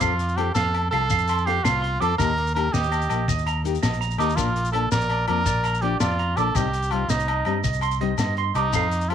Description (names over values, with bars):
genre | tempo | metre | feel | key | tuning
highlife guitar band | 110 BPM (dotted quarters) | 12/8 | straight | unclear | A4 = 440 Hz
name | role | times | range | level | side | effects
trumpet with cup mute | melody | 0.0-9.1 s | Eb4 to Bb4 | -25 LUFS | right 2 dB | none
nylon-string guitar | accompaniment | 0.0-9.1 s | F3 to A4 | -30 LUFS | left 12 dB | none
clean electric guitar | arpeggios | 0.0-8.9 s | Bb4 to D6 | -28 LUFS | right 11 dB | tape echo
fingered electric bass | bass | 0.0-9.1 s | Bb1 to G2 | -26 LUFS | equal | none
crunchy breakbeat drum kit | drums | 0.0-9.1 s | hi-hat, kick drum, snare drum | -32 LUFS | equal | none
agogo bells | percussion | 0.0-9.1 s | none | -32 LUFS | left 12 dB | none
shekere | percussion | 0.0-9.1 s | none | -30 LUFS | left 5 dB | none
room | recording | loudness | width
light reverb, small room reverb | 1960s-style stereo with parts hard left and right | -20 LUFS | side -9 dB against mid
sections
0.0-9.1 A section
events
none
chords
0.0 F; 2.2 Eb; 4.4 Bb; 6.6 Cm